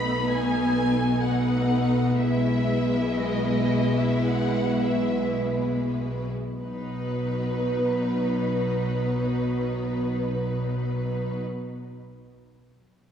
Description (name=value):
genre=classical, slow romantic movement for string orchestra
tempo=free time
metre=none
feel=none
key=B major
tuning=A4 = 439 Hz
part: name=rich studio violin section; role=melody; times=0.0-11.4 s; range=B4 to B5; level=-32 LUFS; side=left 2 dB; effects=none
part: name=rich studio violin section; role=second line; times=0.0-11.4 s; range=D#4 to B4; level=-31 LUFS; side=equal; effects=none
part: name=rich studio viola section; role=accompaniment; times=0.0-11.4 s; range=F#3 to B3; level=-27 LUFS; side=equal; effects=none
part: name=clear studio cello section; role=bass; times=0.0-11.4 s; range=B2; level=-30 LUFS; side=equal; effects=none
part: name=rich studio double bass section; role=bass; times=0.0-11.4 s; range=B1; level=-31 LUFS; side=right 1 dB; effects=none
room=wet concert hall reverb, RT60 2.3 s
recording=heard from further back in the room, small room ambience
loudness=-23 LUFS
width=side -8 dB against mid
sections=0.0-6.6 A section; 6.6-11.1 B section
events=slowing down 0.0-6.6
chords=0.0 B7; 2.2 E/B; 6.6 B